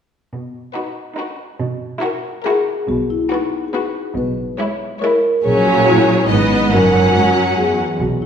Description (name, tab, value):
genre	cinematic, playful, whimsical film cue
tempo	141 BPM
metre	3/4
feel	straight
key	B major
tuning	A4 = 440 Hz
part	warm chamber cello section	bass	0.3-8.3 s	E2 to B2	-22 LUFS	right 3 dB	none
part	rich chamber violin section	melody	0.7-7.8 s	A#4 to F#5	-22 LUFS	left 1 dB	none
part	warm chamber viola section	accompaniment	0.7-7.8 s	F#3 to E4	-21 LUFS	equal	none
part	rich chamber violin section	second line	0.8-7.8 s	B3 to F#4	-22 LUFS	equal	none
part	marimba with soft mallets	melody	2.4-8.3 s	D#4 to B4	-18 LUFS	left 2 dB	none
part	warm studio double bass section	bass	2.9-8.3 s	F#1 to B1	-23 LUFS	right 3 dB	none
room	wet recital hall reverb, RT60 1.5 s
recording	recorded in a church or concert hall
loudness	-14 LUFS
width	side -8 dB against mid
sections	0.3-2.9 A section; 2.9-8.3 B section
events	none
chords	0.3 B; 1.6 F#7/B; 2.9 B5; 4.2 C#m7/B; 5.4 F#/A#; 6.3 G#m; 6.7 F#